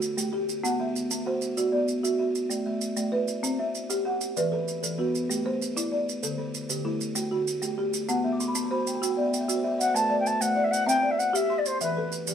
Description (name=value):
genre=southern african traditional, mbira-style interlocking cycle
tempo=129 BPM (dotted quarters)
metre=12/8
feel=straight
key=A dorian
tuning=A4 = 440 Hz
part: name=buzzing kalimba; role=arpeggios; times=0.0-12.3 s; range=D3 to D6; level=-30 LUFS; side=right 1 dB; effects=none
part: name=folk marimba with medium mallets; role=arpeggios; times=0.0-12.3 s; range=D3 to C6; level=-28 LUFS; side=equal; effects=none
part: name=maracas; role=percussion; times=0.0-12.3 s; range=none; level=-34 LUFS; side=right 4 dB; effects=none
part: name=mellow concert flute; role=melody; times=9.8-12.1 s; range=B4 to A5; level=-25 LUFS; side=left 1 dB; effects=none
room=moderate stone room reverb, RT60 1.0 s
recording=band playing live in one room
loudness=-24 LUFS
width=side -8 dB against mid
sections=0.0-9.9 A section; 9.9-12.3 B section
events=kalimba fill 8.2-9.9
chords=0.0 D; 0.6 Bm; 2.5 A5; 3.4 C; 4.4 E5; 5.3 Am; 6.2 D; 8.1 Bm; 9.9 Am; 10.9 C; 11.8 E5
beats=0.17 | 0.63 1.10 1.57 2.03 | 2.50 2.97 3.43 3.90 | 4.36 4.83 5.29 5.76 | 6.23 6.69 7.16 7.62 | 8.09 8.55 9.02 9.48 | 9.95 10.41 10.88 11.35 | 11.81 12.28